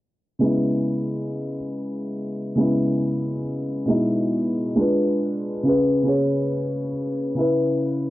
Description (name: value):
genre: hip hop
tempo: 69 BPM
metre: 4/4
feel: swing 64% on 16ths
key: unclear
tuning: A4 = 438 Hz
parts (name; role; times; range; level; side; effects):
- felt-muted upright piano; accompaniment; 0.4-8.1 s; B2 to C#5; -20 LUFS; equal; cassette tape, low-pass filter
room: light reverb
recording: dry, gritty hardware recording, low-pass filter, nothing above 10.6 kHz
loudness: -20 LUFS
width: side -16 dB against mid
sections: 0.4-8.1 A section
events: filter sweep 0.4-8.1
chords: 0.4 C#m7; 3.9 Emaj7/B; 4.8 G#dim7; 5.6 C#5; 7.4 C#m7